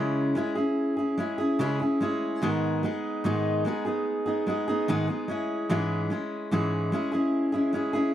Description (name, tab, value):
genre	pop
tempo	73 BPM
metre	4/4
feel	straight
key	C# minor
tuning	A4 = 443 Hz
part	picked steel-string acoustic guitar	solo	0.0-8.1 s	G#2 to G#4	-25 LUFS	equal	none
room	moderate booth ambience, RT60 0.2 s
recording	dry, close 1970s-style studio recording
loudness	-25 LUFS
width	side -11 dB against mid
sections	0.0-8.1 A section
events	none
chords	0.0 C#m; 2.4 G#m; 5.3 C#m/G#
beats	0.76 1.59 | 2.42 3.25 4.07 4.89 | 5.70 6.52 7.33